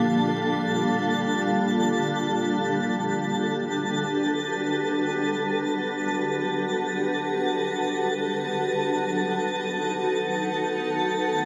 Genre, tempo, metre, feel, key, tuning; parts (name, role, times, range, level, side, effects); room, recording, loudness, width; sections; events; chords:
ambient; free time; A4 = 441 Hz
granular cloud pad; sustained chords; 0.0-11.5 s; Bb3 to F#5; -27 LUFS; equal; built-in reverb, shimmer reverb
bowed-like drone; drone; 0.0-2.7 s; G3; -35 LUFS; equal; built-in reverb
twinkling granular texture; texture; 0.0-11.5 s; A4 to A5; -30 LUFS; equal; built-in reverb, shimmer reverb
wet huge ambient reverb, RT60 9.0 s; -25 LUFS; mono
0.0-2.6 A section; 2.6-11.5 B section
0.0 Bb6; 2.6 Gmaj7; 8.9 B7